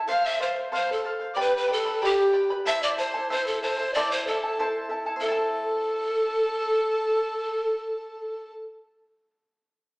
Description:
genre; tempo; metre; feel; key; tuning
andean folk, Andean ensemble; 94 BPM; 2/4; straight; A minor; A4 = 440 Hz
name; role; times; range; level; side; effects
charango; accompaniment; 0.0-9.3 s; E4 to B5; -29 LUFS; equal; none
breathy polished pan flute; melody; 0.1-8.5 s; G4 to F5; -25 LUFS; equal; none
clear violin; second line; 0.1-8.5 s; G5 to F6; -35 LUFS; equal; none
room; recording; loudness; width
wet large studio reverb, RT60 1.3 s; band playing live in one room, small speaker sound; -23 LUFS; side -33 dB against mid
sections
0.0-5.2 A section; 5.2-7.8 B section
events
none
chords
0.1 F; 1.4 G; 2.7 Am

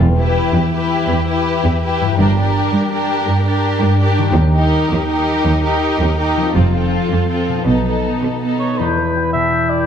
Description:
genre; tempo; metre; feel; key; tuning
cinematic; 110 BPM (dotted quarters); 12/8; straight; E phrygian; A4 = 441 Hz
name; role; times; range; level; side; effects
concert harp; arpeggios; 0.0-9.9 s; E2 to B4; -22 LUFS; left 8 dB; none
rich symphonic cello section; bass; 0.0-8.7 s; D#2 to B2; -18 LUFS; right 2 dB; none
rich symphonic double bass section; bass; 0.0-8.0 s; E1 to D#2; -18 LUFS; right 3 dB; none
warm symphonic violin section; melody; 0.2-8.8 s; A4 to B4; -24 LUFS; left 2 dB; none
warm symphonic violin section; second line; 0.2-8.8 s; D#4 to G4; -22 LUFS; left 2 dB; none
rich symphonic viola section; accompaniment; 0.2-8.8 s; B3 to E4; -21 LUFS; right 1 dB; none
dark cor anglais; second line; 8.6-9.9 s; B4 to E5; -19 LUFS; right 2 dB; none
mellow hollow small flute group; second line; 8.8-9.9 s; G6; -22 LUFS; left 10 dB; none
warm clarinet; second line; 8.8-9.9 s; E4; -22 LUFS; right 3 dB; none
room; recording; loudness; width
moderate recital hall reverb, RT60 1.6 s; none; -14 LUFS; side -8 dB against mid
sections
0.0-8.8 A section; 8.8-9.9 B section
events
build-up 0.0-8.8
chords
0.0 Em; 2.2 Gm; 4.4 D#; 6.5 F; 7.7 B7; 8.8 Em

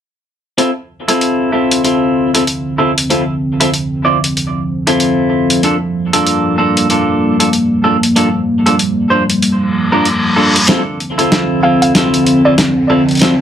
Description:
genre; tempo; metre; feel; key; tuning
glitch hop; 95 BPM; 4/4; swing 59% on 16ths; unclear; A4 = 440 Hz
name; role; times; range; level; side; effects
dark analog pad; sustained chords; 1.4-13.4 s; D3 to C4; -15 LUFS; equal; chorus, vintage 12-bit sampler grit
clean electric guitar; stabs; 0.6-13.3 s; Bb3 to D5; -14 LUFS; equal; vintage 12-bit sampler grit, low-pass filter, digital delay
boom bap sampler-style drum kit; drums; 0.6-13.4 s; hi-hat, snare drum; -15 LUFS; equal; small room reverb
reverse cymbal and riser; sound effects; 9.7-13.4 s; none; -18 LUFS; left 1 dB; none
woody wave-folded pluck; melody; 11.6-12.6 s; D5 to F5; -16 LUFS; right 2 dB; chorus, digital delay
room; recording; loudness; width
wet studio reverb, RT60 0.5 s; none; -11 LUFS; side -9 dB against mid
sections
0.6-10.7 A section; 10.7-13.4 B section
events
reverse cymbal 9.7-10.7; build-up 10.7-13.4; drum fill 10.7-13.4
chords
0.6 Dm7; 5.6 Gm7; 10.7 Dm7

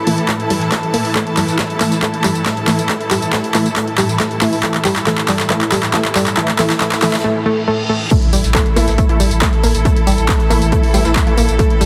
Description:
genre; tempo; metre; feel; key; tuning
driving peak-time techno; 138 BPM; 4/4; straight; unclear; A4 = 440 Hz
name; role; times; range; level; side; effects
swarming drone; drone; 0.0-11.9 s; A2 to E3; -27 LUFS; equal; built-in reverb, phaser, sidechain pumping
bright studio string section; texture; 0.0-11.9 s; E4 to A5; -26 LUFS; equal; sidechain pumping
analog pluck; riff; 0.1-11.9 s; G3 to Bb3; -22 LUFS; equal; chorus, tube saturation, sidechain pumping, digital delay
rave stab; stabs; 0.1-11.3 s; E3 to E4; -23 LUFS; equal; chorus, built-in reverb, cassette tape, sidechain pumping, delay
techno drum kit; drums; 0.1-11.9 s; crash cymbal, handclaps, hi-hat, tambourine; -22 LUFS; equal; overdrive, sidechain pumping on hats, sidechain pumping on perc, sidechain pumping on cymbals
unplugged drum kit; drums; 0.1-11.9 s; hi-hat, snare drum; -34 LUFS; equal; none
electronic kick drum; drums; 0.3-11.7 s; none; -18 LUFS; equal; overdrive, high-pass filter on kick
reverse cymbal and impact; sound effects; 7.4-9.9 s; none; -27 LUFS; equal; none
saturated sub bass; bass; 8.3-11.9 s; A1; -19 LUFS; equal; tube saturation, sidechain pumping, low-pass filter
room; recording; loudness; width
moderate huge ambient reverb, RT60 4.2 s; heavily compressed radio sound, multiband compression; -15 LUFS; mono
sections
0.0-8.1 A section; 8.1-11.9 B section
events
build-up 0.0-8.1; drum fill 0.0-7.2; filter sweep on synth arpeggio sound 0.0-8.1; filter sweep on synth stab 0.0-8.1; reverse cymbal 7.4-8.1; drop 8.1-11.9; impact 8.1-9.9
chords
0.0 A5

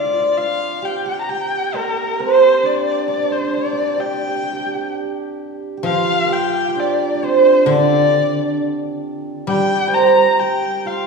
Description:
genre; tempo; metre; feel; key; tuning
chinese traditional, Chinese chamber ensemble; 66 BPM; 2/4; rubato; G yu mode; A4 = 440 Hz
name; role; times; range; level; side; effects
dark erhu; melody; 0.0-11.1 s; Bb4 to Bb5; -19 LUFS; left 4 dB; none
hammered dulcimer; second line; 0.0-11.1 s; Bb3 to C5; -18 LUFS; right 4 dB; none
guzheng; accompaniment; 0.0-1.3, 5.8-11.1 s; D3 to G3; -22 LUFS; equal; none
room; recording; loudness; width
wet scoring stage reverb, RT60 1.9 s; heard from further back in the room, small room ambience; -15 LUFS; side -4 dB against mid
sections
0.0-5.8 A section; 5.8-11.1 B section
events
none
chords
none

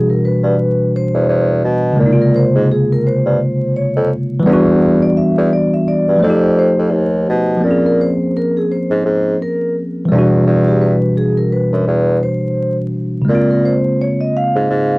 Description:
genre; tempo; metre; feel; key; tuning
hip hop; 85 BPM; 4/4; swing 57% on 16ths; unclear; A4 = 442 Hz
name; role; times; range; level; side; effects
vibraphone with soft mallets; melody; 0.0-15.0 s; G4 to F5; -19 LUFS; equal; none
tine electric piano; accompaniment; 0.0-15.0 s; B2 to C5; -14 LUFS; equal; cassette tape
mellow bassoon; bass; 0.4-15.0 s; Eb2 to B2; -15 LUFS; equal; none
room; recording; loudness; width
light reverb; dry, gritty hardware recording, vinyl crackle; -12 LUFS; side -26 dB against mid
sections
0.0-7.6 A section; 7.6-15.0 B section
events
none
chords
0.0 Em7; 2.0 Bbm7; 4.5 Em7; 6.2 F7; 7.6 Bbm7; 10.1 Em7; 13.3 Bbm7

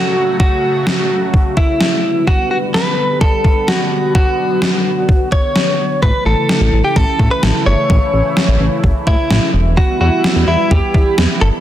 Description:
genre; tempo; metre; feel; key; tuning
synth-pop; 128 BPM; 4/4; straight; unclear; A4 = 443 Hz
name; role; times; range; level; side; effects
direct-recorded clean electric guitar; melody; 0.0-11.5 s; E4 to C#5; -16 LUFS; equal; digital delay
sweeping resonant pad; sustained chords; 0.0-11.6 s; C#3 to B4; -20 LUFS; equal; chorus
gated 80s digital drum machine; drums; 0.4-11.3 s; kick drum, snare drum; -15 LUFS; equal; gated reverb, gated reverb snare, overdrive
chorused synth bass; bass; 6.0-11.5 s; E1 to E3; -14 LUFS; equal; none
room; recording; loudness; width
light reverb, digital ambience; dense, heavily limited modern master; -11 LUFS; side -12 dB against mid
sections
0.0-11.6 A section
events
none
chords
0.0 F#m; 2.0 G; 4.1 Bm/D; 6.0 A; 9.5 Em

